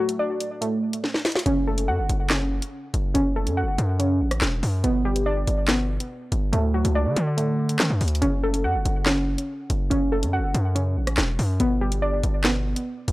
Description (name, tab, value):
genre	hip hop, drill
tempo	142 BPM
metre	4/4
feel	half-time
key	F# phrygian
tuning	A4 = 442 Hz
part	warbly dusty pluck	arpeggios	0.0-13.1 s	A3 to F#5	-25 LUFS	equal	chorus, low-pass filter, analog delay
part	drill drum kit	drums	0.1-13.1 s	handclaps, hi-hat, rim click, snare drum	-25 LUFS	equal	none
part	distorted 808-style bass	bass	1.5-13.1 s	E1 to D3	-23 LUFS	equal	distortion
room	little or no reverb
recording	dry, gritty hardware recording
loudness	-21 LUFS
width	side -18 dB against mid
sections	0.0-13.1 A section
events	break 0.0-1.5; drum fill 1.0-1.5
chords	0.0 D; 1.5 F#m; 4.8 G; 6.5 D; 8.2 F#m; 11.6 G